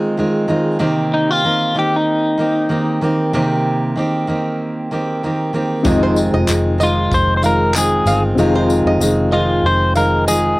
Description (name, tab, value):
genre	acoustic pop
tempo	95 BPM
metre	4/4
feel	swing 55% on 16ths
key	C minor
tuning	A4 = 440 Hz
part	fingerpicked steel-string acoustic guitar	accompaniment	0.0-10.6 s	F2 to G4	-17 LUFS	right 1 dB	none
part	electric guitar at the edge of break-up	melody	1.1-3.0, 6.8-10.6 s	Eb4 to C5	-16 LUFS	left 1 dB	warbly pitch drift, cassette tape
part	reed electric piano	accompaniment	5.8-10.6 s	C4 to F5	-21 LUFS	left 3 dB	fast tremolo
part	tambourine	percussion	5.8-10.4 s	none	-27 LUFS	left 5 dB	none
part	vintage muted fingered electric bass	bass	5.9-10.5 s	F1 to G1	-19 LUFS	equal	none
part	natural country drum kit	drums	5.9-8.2 s	handclaps, kick drum, tambourine	-24 LUFS	equal	cassette tape
part	bluegrass banjo	arpeggios	6.0-10.4 s	C5 to F5	-22 LUFS	right 2 dB	none
room	little or no reverb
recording	home recording on cassette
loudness	-14 LUFS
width	side -21 dB against mid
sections	0.0-10.6 A section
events	none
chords	0.0 Fm7; 0.8 Cm7; 5.9 Fm7